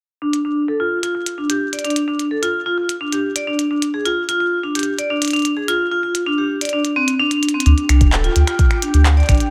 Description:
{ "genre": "IDM", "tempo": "129 BPM", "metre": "4/4", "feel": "straight", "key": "D minor", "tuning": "A4 = 440 Hz", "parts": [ { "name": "vibraphone with hard mallets", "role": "arpeggios", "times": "0.2-9.4 s", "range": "C4 to D5", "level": "-20 LUFS", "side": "equal", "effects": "low-pass filter, digital delay" }, { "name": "glitchy drum kit", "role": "drums", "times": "0.3-9.5 s", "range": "finger snaps, handclaps, hi-hat", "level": "-25 LUFS", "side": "equal", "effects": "none" }, { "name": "warm sub bass", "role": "bass", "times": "7.7-9.4 s", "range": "D1 to D2", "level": "-15 LUFS", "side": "equal", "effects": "none" }, { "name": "bubbling stepped-filter texture", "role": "texture", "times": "7.8-9.5 s", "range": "G4 to G5", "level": "-34 LUFS", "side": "equal", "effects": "chorus, built-in reverb" }, { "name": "electronic kick drum", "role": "drums", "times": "8.0-9.4 s", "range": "none", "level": "-16 LUFS", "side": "equal", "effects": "none" } ], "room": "light reverb", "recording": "none", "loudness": "-18 LUFS", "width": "mono", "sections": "0.2-7.7 A section; 7.7-9.5 B section", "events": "filter sweep on vibraphone 0.2-7.7; drum fill 7.4", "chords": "0.2 Dm; 3.9 N.C.; 7.7 Dm", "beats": "| 0.22 0.68 1.15 1.61 | 2.08 2.54 3.01 3.47 | 3.94 4.40 4.87 5.33 | 5.80 6.26 6.73 7.20 | 7.66 8.12 8.59 9.05" }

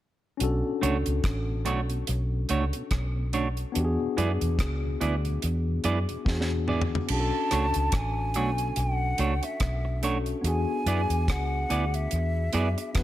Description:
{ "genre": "lovers rock reggae", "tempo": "72 BPM", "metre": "4/4", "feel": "swing 57% on 16ths", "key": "B dorian", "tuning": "A4 = 440 Hz", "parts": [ { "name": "tine electric piano", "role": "accompaniment", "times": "0.4-13.0 s", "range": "B3 to B4", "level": "-32 LUFS", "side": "left 4 dB", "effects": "slow stereo tremolo, dub echo" }, { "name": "vintage muted fingered electric bass", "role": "bass", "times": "0.4-13.0 s", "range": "A1 to F#2", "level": "-28 LUFS", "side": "equal", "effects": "none" }, { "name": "deep reggae drum kit", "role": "drums", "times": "0.4-13.0 s", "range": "crash cymbal, hi-hat, kick drum, rim click, snare drum, toms", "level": "-31 LUFS", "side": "equal", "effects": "dub echo" }, { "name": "mellow tonewheel organ", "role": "accompaniment", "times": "0.6-6.8 s", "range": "E2 to D4", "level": "-40 LUFS", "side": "right 4 dB", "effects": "none" }, { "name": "semi-hollow electric guitar", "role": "stabs", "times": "0.8-12.8 s", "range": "A3 to D5", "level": "-31 LUFS", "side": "right 4 dB", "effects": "none" }, { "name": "breathy hollow jazz flute", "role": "melody", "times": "7.1-13.0 s", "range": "E5 to A5", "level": "-31 LUFS", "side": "right 1 dB", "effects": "tape echo" } ], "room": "light reverb, studio reverb", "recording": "none", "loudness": "-25 LUFS", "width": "side -14 dB against mid", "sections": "0.4-7.1 A section; 7.1-13.0 B section", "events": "drum fill 6.3-7.1", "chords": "0.4 Bm9; 3.7 E7; 7.1 Bm9; 10.4 E7", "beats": "| 0.40 1.24 2.07 2.91 | 3.74 4.58 5.42 6.25 | 7.09 7.92 8.76 9.60 | 10.44 11.27 12.11 12.95" }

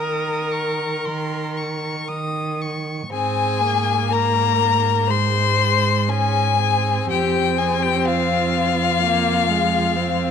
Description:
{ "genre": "classical, slow romantic movement for string quartet", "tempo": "56-65 BPM", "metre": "4/4", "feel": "rubato", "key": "Ab major", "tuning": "A4 = 439 Hz", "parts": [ { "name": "warm violin", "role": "melody", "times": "0.0-10.3 s", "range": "F5 to C6", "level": "-21 LUFS", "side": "left 10 dB", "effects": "none" }, { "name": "warm violin", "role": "second line", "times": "0.0-10.3 s", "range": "F4 to Eb6", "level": "-25 LUFS", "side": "left 3 dB", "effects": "none" }, { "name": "warm viola", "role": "accompaniment", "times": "0.0-10.3 s", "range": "Ab3 to Bb4", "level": "-26 LUFS", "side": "right 2 dB", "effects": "none" }, { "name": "rich cello", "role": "bass", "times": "0.0-10.3 s", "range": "F2 to Eb3", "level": "-23 LUFS", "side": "right 4 dB", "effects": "none" } ], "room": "light reverb", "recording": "close, detailed microphones", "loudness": "-18 LUFS", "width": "side -7 dB against mid", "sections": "0.0-3.1 A section; 3.1-10.3 B section", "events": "none", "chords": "0.0 Eb5; 3.1 Ab; 7.1 Fm", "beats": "1.05 2.08 | 3.12 4.11 5.09 6.09 | 7.09 8.06 9.03 9.97" }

